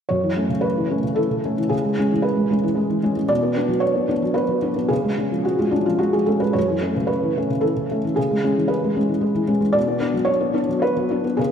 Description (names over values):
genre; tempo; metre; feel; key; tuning
neoclassical minimalist piano; 112 BPM; 3/4; rubato; F# minor; A4 = 438 Hz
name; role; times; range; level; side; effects
felt-muted upright piano; solo; 0.1-11.5 s; F#2 to D5; -18 LUFS; equal; tape echo
room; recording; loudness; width
wet lush hall reverb, RT60 1.8 s; dreamy mix soaked in reverb; -18 LUFS; side -8 dB against mid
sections
0.1-11.5 A section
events
none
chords
0.1 F#m7; 1.7 C#m7; 3.3 Bm; 4.9 C#; 6.6 F#m7; 8.2 C#m7; 9.8 Bm